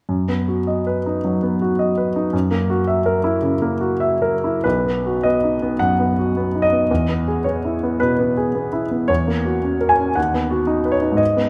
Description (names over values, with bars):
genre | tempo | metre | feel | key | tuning
classical, romantic character piece for solo piano | 89-118 BPM | 4/4 | rubato | B major | A4 = 440 Hz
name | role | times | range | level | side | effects
clear grand piano | solo | 0.1-11.5 s | B1 to G#5 | -19 LUFS | equal | none
room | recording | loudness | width
moderate recital hall reverb, RT60 1.6 s | none | -19 LUFS | mono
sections
0.1-4.6 A section; 4.6-11.5 B section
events
none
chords
0.1 B/F#; 2.3 F#7; 4.6 B; 6.9 E; 9.1 F#7/E; 10.2 B/D#